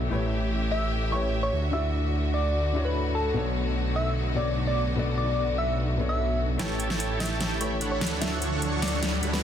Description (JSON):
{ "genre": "future bass", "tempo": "148 BPM", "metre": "4/4", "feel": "half-time", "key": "unclear", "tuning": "A4 = 440 Hz", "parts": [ { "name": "dark grand piano", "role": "accompaniment", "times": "0.0-9.4 s", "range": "B2 to D5", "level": "-32 LUFS", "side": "left 4 dB", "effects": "ping-pong delay" }, { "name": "rich symphonic string section", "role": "sustained chords", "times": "0.0-9.4 s", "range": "D3 to E5", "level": "-35 LUFS", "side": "left 1 dB", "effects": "none" }, { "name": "wide detuned saw bass", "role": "bass", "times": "0.0-9.4 s", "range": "A1 to D2", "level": "-28 LUFS", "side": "right 1 dB", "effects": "chorus" }, { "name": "soft struck synth lead", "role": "melody", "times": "0.7-9.4 s", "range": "A4 to E5", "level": "-31 LUFS", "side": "equal", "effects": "chorus, cassette tape, ping-pong delay" }, { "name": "dense compressed supersaw", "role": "riff", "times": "6.6-9.4 s", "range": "D4 to C#6", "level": "-31 LUFS", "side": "right 2 dB", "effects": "low-pass filter" }, { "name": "dubstep drum kit", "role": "drums", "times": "6.6-9.4 s", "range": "hi-hat, snare drum", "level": "-30 LUFS", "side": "right 1 dB", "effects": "none" }, { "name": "riser", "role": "sound effects", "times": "7.6-9.4 s", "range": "none", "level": "-35 LUFS", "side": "right 1 dB", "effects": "none" } ], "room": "light reverb", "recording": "dense, heavily limited modern master", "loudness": "-24 LUFS", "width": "side -9 dB against mid", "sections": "0.0-6.6 A section; 6.6-9.4 B section", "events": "build-up 6.6-9.4; drum fill 6.6-9.4; riser 7.6-9.4", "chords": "0.1 A7; 1.5 Dmaj7; 3.4 Bm7; 6.6 A7; 8.0 Dmaj7" }